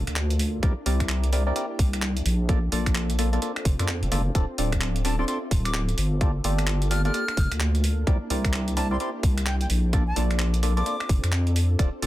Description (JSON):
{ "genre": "UK garage, two-step garage", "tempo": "129 BPM", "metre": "4/4", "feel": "swing 61% on 16ths", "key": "unclear", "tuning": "A4 = 440 Hz", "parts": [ { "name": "soft string machine", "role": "sustained chords", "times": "0.0-12.1 s", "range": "Bb3 to E5", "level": "-37 LUFS", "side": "equal", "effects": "ensemble chorus, sidechain pumping" }, { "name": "deep soft wobble bass", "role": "bass", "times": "0.0-12.1 s", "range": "D1 to F2", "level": "-24 LUFS", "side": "equal", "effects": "chorus" }, { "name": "breakbeat sampler-style drum kit", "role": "drums", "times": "0.1-12.1 s", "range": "finger snaps, handclaps, hi-hat", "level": "-31 LUFS", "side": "right 1 dB", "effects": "soft clipping on snare" }, { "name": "percussive organ stab", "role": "stabs", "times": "0.6-12.1 s", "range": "Bb3 to D5", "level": "-30 LUFS", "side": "equal", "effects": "chorus, phaser, dub echo" }, { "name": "electronic kick drum", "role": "drums", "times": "0.6-11.9 s", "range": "none", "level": "-22 LUFS", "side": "equal", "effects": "none" }, { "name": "bright reedy wooden flute", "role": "melody", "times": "5.0-11.1 s", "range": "G5 to F6", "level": "-33 LUFS", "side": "left 1 dB", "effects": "dub echo" } ], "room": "light reverb", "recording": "dense, heavily limited modern master", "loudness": "-22 LUFS", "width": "side -15 dB against mid", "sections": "0.0-12.1 A section", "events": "none", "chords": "0.0 Gm9 (rootless); 0.6 C9; 2.3 Bbmaj7; 4.3 Dm7; 6.2 Gm9; 8.1 C9; 9.7 Bbmaj7" }